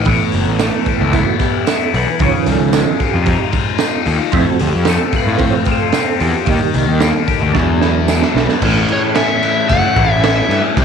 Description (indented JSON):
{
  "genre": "psychedelic rock",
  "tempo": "112 BPM",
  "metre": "4/4",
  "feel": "straight",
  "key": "unclear",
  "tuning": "A4 = 440 Hz",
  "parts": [
    { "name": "fuzz guitar", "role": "riff", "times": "0.0-10.8 s", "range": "E2 to G4", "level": "-18 LUFS", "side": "left 14 dB", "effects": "distortion, phaser" },
    { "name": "fuzz picked electric bass", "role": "bass", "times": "0.0-10.8 s", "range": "F#1 to A2", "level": "-17 LUFS", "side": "left 1 dB", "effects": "overdrive" },
    { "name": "percussive tonewheel organ", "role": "sustained chords", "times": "0.1-10.8 s", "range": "D#3 to C#5", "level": "-20 LUFS", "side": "right 10 dB", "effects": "chorus vibrato, fast rotary speaker" },
    { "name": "crunchy breakbeat drum kit", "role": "drums", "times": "0.1-10.8 s", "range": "crash cymbal, hi-hat, kick drum, snare drum", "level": "-18 LUFS", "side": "right 4 dB", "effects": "none" },
    { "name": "tambourine", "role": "percussion", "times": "0.6-8.2 s", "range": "none", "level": "-33 LUFS", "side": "right 14 dB", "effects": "none" },
    { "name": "fuzz lead guitar", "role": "melody", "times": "8.9-10.6 s", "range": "C#5 to F#5", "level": "-16 LUFS", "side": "left 2 dB", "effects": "distortion, slapback echo" }
  ],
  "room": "light reverb",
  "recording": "1960s-style stereo with parts hard left and right",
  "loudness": "-12 LUFS",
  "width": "side -6 dB against mid",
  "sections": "0.0-8.6 A section; 8.6-10.8 B section",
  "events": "tonewheel organ solo 0.0-8.6; drum fill 7.6-8.6",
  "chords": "0.1 Asus2; 2.2 C#add9; 4.3 F; 6.5 D#; 7.6 E7; 8.6 A"
}